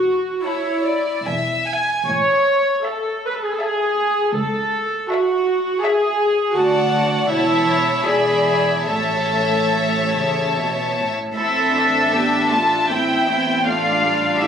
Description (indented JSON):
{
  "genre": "classical, slow romantic movement for string orchestra",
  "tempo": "69-85 BPM",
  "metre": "3/4",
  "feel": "rubato",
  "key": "A major, A minor from 11.4 s",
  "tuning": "A4 = 440 Hz",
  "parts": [
    { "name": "warm studio viola section", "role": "accompaniment", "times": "0.0-14.5 s", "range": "G3 to C#5", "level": "-19 LUFS", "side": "equal", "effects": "none" },
    { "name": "dark chamber double bass section", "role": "bass", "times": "0.0-14.5 s", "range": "E1 to D2", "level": "-30 LUFS", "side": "right 1 dB", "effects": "none" },
    { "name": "warm chamber cello section", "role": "bass", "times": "0.0-14.5 s", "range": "C#2 to A4", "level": "-25 LUFS", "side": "right 4 dB", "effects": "none" },
    { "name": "warm studio violin section", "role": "melody", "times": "0.4-14.5 s", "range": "E5 to B5", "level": "-22 LUFS", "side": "left 1 dB", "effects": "none" },
    { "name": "warm chamber violin section", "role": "second line", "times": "0.4-14.5 s", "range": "E4 to G#5", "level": "-22 LUFS", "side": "left 2 dB", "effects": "none" }
  ],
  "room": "moderate recital hall reverb, RT60 1.5 s",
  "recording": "recorded on a phone in the room, club reverb",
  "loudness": "-16 LUFS",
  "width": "side -7 dB against mid",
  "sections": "0.0-11.4 A section; 11.4-14.5 B section",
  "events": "none",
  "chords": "0.0 A/E; 1.3 E; 2.1 A; 4.4 A/C#; 6.6 D; 7.3 A/E; 8.1 E7; 8.9 A; 11.4 Am",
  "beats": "0.45 1.27 | 2.09 2.87 3.61 | 4.35 5.11 5.83 | 6.56 7.30 8.06 | 8.88 9.74 10.54 | 11.37 12.14 12.90 | 13.66 14.40"
}